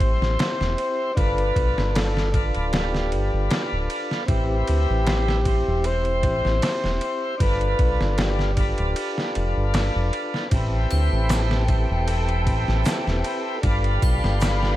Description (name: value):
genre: trip hop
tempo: 77 BPM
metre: 4/4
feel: swing 53% on 16ths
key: A minor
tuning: A4 = 441 Hz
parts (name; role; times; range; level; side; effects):
- trumpet with bucket mute; melody; 0.0-9.7 s; G4 to C5; -28 LUFS; left 1 dB; tape echo
- tonewheel organ; accompaniment; 0.0-14.8 s; C4 to C5; -27 LUFS; equal; slow rotary speaker, harmonic tremolo, tape echo
- round analog bass; bass; 0.0-14.8 s; D1 to D2; -23 LUFS; equal; none
- trip hop sampler-style drum kit; drums; 0.0-14.8 s; kick drum, ride cymbal, snare drum; -25 LUFS; equal; none
- muted studio violin section; sustained chords; 10.5-14.8 s; G4 to B5; -30 LUFS; equal; vintage 12-bit sampler grit
- triangle and tube shaker; percussion; 10.9-14.6 s; none; -40 LUFS; left 5 dB; none
room: small room reverb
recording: vinyl crackle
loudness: -20 LUFS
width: side -14 dB against mid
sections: 0.0-14.8 A section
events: none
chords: 0.0 Am7; 1.2 G7; 4.3 Am7; 7.4 G7; 10.5 Am7; 13.6 G7